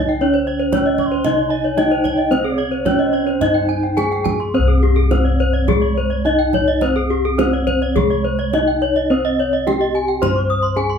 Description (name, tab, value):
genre	Balinese gamelan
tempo	105-118 BPM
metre	4/4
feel	straight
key	C pelog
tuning	A4 = 440 Hz
part	gamelan-type bronze metallophone	melody	0.0-11.0 s	Ab3 to C5	-20 LUFS	right 1 dB	none
part	gamelan-type bronze metallophone	arpeggios	0.0-11.0 s	Ab4 to Db6+35c	-25 LUFS	right 5 dB	none
part	gamelan-type bossed gongs	bass	0.0-11.0 s	C2 to Db4+35c	-21 LUFS	equal	none
part	gamelan-type bronze metallophone	arpeggios	0.1-10.9 s	G4 to Eb6	-20 LUFS	left 4 dB	none
part	kendang	percussion	0.3-10.8 s	none	-25 LUFS	right 5 dB	none
part	mellow hollow alto recorder	second line	1.0-4.3 s	C5 to Db6+36c	-27 LUFS	right 5 dB	none
room	moderate studio reverb, RT60 0.6 s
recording	band playing live in one room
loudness	-15 LUFS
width	side -7 dB against mid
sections	0.0-4.5 A section; 4.5-11.0 B section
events	none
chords	none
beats	| 0.22 0.73 1.25 1.78 | 2.31 2.86 3.41 3.97 | 4.54 5.11 5.68 6.25 | 6.82 7.39 7.96 8.54 | 9.11 9.67 10.22 10.77